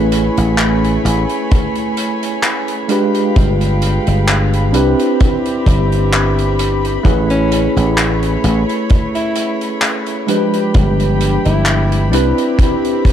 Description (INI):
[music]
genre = vaporwave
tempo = 65 BPM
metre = 4/4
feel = swing 54% on 16ths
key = unclear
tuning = A4 = 440 Hz
[part]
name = bell-like tine electric piano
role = accompaniment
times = 0.0-13.1 s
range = F3 to B4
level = -17 LUFS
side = equal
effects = fast stereo tremolo, wide subtle chorus, analog delay
[part]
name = rich chamber string section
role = sustained chords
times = 0.0-13.1 s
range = Ab3 to B5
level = -22 LUFS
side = right 1 dB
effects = vintage 12-bit sampler grit
[part]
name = dry thumbed slap bass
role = bass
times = 0.0-12.3 s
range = G1 to C2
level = -15 LUFS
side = equal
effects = none
[part]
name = loose indie drum kit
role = drums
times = 0.1-13.1 s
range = handclaps, hi-hat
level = -21 LUFS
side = equal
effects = none
[part]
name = kick drum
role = drums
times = 1.5-13.1 s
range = none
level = -13 LUFS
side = equal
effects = none
[part]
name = warm alto saxophone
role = melody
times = 7.3-12.1 s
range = C#4 to E4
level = -23 LUFS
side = equal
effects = tape echo
[sound]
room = light reverb, small room ambience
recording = dark, warm production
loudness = -12 LUFS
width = side -10 dB against mid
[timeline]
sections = 0.0-13.1 A section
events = none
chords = 0.0 Amaj9; 2.9 G7b9; 4.7 Cmaj7; 7.1 Amaj9; 10.3 G7b9; 12.1 Cmaj7